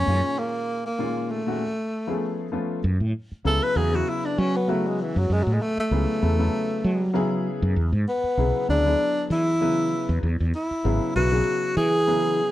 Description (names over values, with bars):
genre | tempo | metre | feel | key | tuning
electric jazz fusion | 97 BPM | 4/4 | swing 55% on 16ths | F# minor | A4 = 441 Hz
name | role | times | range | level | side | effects
breathy tenor saxophone | melody | 0.0-12.5 s | E3 to B4 | -24 LUFS | equal | slapback echo
dark baby grand piano | accompaniment | 0.0-12.5 s | Bb2 to B4 | -28 LUFS | left 2 dB | none
mellow fretless electric bass | bass | 0.0-12.4 s | G#1 to F#3 | -23 LUFS | equal | none
room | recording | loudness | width
light reverb | dark, warm production | -21 LUFS | side -14 dB against mid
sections
0.0-2.8 A section; 2.8-12.5 B section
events
break 0.4-2.8; tenor saxophone solo 2.8-12.5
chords
0.1 Gbmaj9; 1.6 Db7b13; 2.8 F#m11; 7.8 E13; 10.2 C#m7